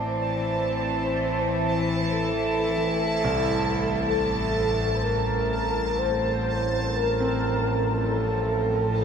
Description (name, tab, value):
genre	dark ambient drone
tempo	62 BPM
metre	4/4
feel	straight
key	A phrygian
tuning	A4 = 442 Hz
part	mellow horn-like synth lead	melody	0.0-9.0 s	A4 to D5	-27 LUFS	equal	phaser, analog chorus, shimmer reverb, ping-pong delay
part	warm studio cello section	sustained chords	0.0-9.0 s	A2 to C5	-28 LUFS	left 1 dB	shimmer reverb
part	analog drone	drone	0.0-9.0 s	A1 to A2	-30 LUFS	equal	chorus
part	bubbling stepped-filter texture	texture	0.0-9.0 s	A5	-31 LUFS	right 3 dB	chorus, built-in reverb, shimmer reverb
part	clear concert grand piano	arpeggios	3.2-9.0 s	C2 to C4	-32 LUFS	right 2 dB	shimmer reverb, ping-pong delay
room	wet huge ambient reverb, RT60 8.4 s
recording	none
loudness	-22 LUFS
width	side -7 dB against mid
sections	0.0-9.0 A section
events	fade-in on synth drone 0.0-9.0; fade-out on cello section 0.0-9.0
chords	0.0 Am; 6.0 F